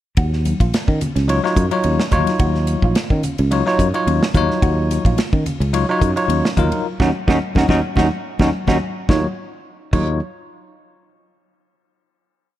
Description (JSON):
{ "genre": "electric jazz fusion", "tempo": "108 BPM", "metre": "4/4", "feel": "swing 53% on 16ths", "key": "Eb minor", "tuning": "A4 = 439 Hz", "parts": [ { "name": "mellow electric guitar", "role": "stabs", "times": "0.2-10.1 s", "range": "Db4 to Gb4", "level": "-25 LUFS", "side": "right 5 dB", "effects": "lush chorus" }, { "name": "sustaining fretless electric bass", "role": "bass", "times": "0.2-10.2 s", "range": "Bb1 to Eb3", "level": "-19 LUFS", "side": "equal", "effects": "none" }, { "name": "modern studio drum kit", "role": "drums", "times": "0.2-10.1 s", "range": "crash cymbal, hi-hat, kick drum, ride cymbal, snare drum", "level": "-20 LUFS", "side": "equal", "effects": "none" }, { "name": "congas", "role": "percussion", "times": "0.5-10.2 s", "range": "none", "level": "-27 LUFS", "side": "left 3 dB", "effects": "none" }, { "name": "bell-like tine electric piano", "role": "accompaniment", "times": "1.3-10.2 s", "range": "Gb3 to Db5", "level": "-20 LUFS", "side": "left 2 dB", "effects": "medium stereo tremolo" } ], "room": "small room ambience", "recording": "dark, warm production", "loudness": "-15 LUFS", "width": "side -13 dB against mid", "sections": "0.2-9.1 groove; 9.1-11.3 final chord", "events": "band accent 6.9-9.1; drum fill 8.8", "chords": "0.2 Ebm9", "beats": "| 0.18 0.74 1.29 1.85 | 2.40 2.96 3.52 4.07 | 4.63 5.19 5.74 6.30 | 6.86 7.42 7.98 8.53 | 9.09 9.65" }